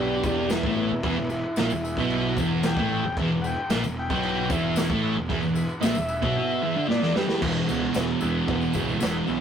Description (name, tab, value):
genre	garage rock duo or trio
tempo	113 BPM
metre	4/4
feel	straight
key	E mixolydian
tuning	A4 = 440 Hz
part	overdriven combo organ	melody	0.0-7.4 s	B3 to G5	-29 LUFS	left 1 dB	none
part	overdriven combo organ	sustained chords	0.0-9.4 s	E4 to C#5	-37 LUFS	equal	phaser
part	fuzz guitar	riff	0.0-9.4 s	E2 to D4	-25 LUFS	right 1 dB	distortion
part	fuzz picked electric bass	bass	0.0-9.4 s	E1 to C#2	-32 LUFS	equal	overdrive
part	raw garage drum kit	drums	0.2-9.1 s	crash cymbal, kick drum, snare drum	-30 LUFS	equal	none
part	tambourine	percussion	0.2-9.3 s	none	-43 LUFS	left 6 dB	none
room	moderate stone room reverb, RT60 1.3 s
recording	rough rehearsal-room recording, warm saturation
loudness	-22 LUFS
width	side -8 dB against mid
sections	0.0-7.4 A section; 7.4-9.4 B section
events	transistor combo organ solo 0.0-7.4; drum fill 6.9-7.4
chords	0.0 E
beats	0.51 | 1.04 1.58 2.11 2.64 | 3.18 3.71 4.24 4.77 | 5.30 5.83 6.37 6.90 | 7.43 7.96 8.49 9.02